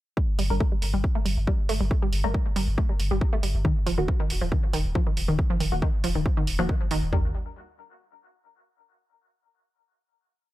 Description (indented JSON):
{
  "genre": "driving peak-time techno",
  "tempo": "138 BPM",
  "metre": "4/4",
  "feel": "straight",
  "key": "G harmonic minor",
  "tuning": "A4 = 440 Hz",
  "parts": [
    { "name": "wide unison pluck", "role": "riff", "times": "0.2-7.3 s", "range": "Eb3 to A3", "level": "-30 LUFS", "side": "equal", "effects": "overdrive, auto-pan, sidechain pumping, tape echo" },
    { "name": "techno drum kit", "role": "drums", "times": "0.2-7.2 s", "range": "kick drum, toms", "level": "-25 LUFS", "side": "equal", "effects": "none" },
    { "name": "saturated sub bass", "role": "bass", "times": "0.4-7.3 s", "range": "Eb1 to G1", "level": "-28 LUFS", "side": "equal", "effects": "tube saturation, sidechain pumping, low-pass filter" },
    { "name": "electronic hi-hat", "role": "drums", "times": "0.4-7.0 s", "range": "none", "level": "-34 LUFS", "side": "right 3 dB", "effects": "sidechain pumping on hats" },
    { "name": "filtered dub chord stab", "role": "stabs", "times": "0.5-7.3 s", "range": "Eb3 to Bb4", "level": "-33 LUFS", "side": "left 1 dB", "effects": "phaser, wide subtle chorus, sidechain pumping, dub echo" }
  ],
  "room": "digital ambience",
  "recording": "none",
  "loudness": "-23 LUFS",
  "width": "side -16 dB against mid",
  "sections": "0.2-7.1 groove; 7.1-8.9 final chord",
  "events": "none",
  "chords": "none"
}